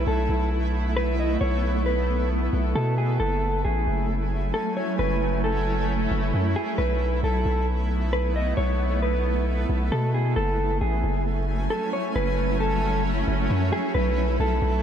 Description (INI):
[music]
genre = hip hop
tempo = 134 BPM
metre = 4/4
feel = half-time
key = F# minor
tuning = A4 = 440 Hz
[part]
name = mellow electric guitar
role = melody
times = 0.0-14.8 s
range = G#4 to D#5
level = -28 LUFS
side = equal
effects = low-pass filter, tape echo
[part]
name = granular cloud pad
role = sustained chords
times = 0.0-14.8 s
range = F#3 to G#5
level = -28 LUFS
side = right 1 dB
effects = built-in reverb
[part]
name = long sustained 808-style bass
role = bass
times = 0.0-14.8 s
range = F#1 to B2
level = -24 LUFS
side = equal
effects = none
[sound]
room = light reverb, digital ambience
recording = none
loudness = -22 LUFS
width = side -8 dB against mid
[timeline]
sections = 0.0-10.4 A section; 10.4-14.8 B section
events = none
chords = 0.0 B7sus4; 3.2 F#m9; 6.8 B7sus4; 10.4 F#m9; 13.9 B7sus4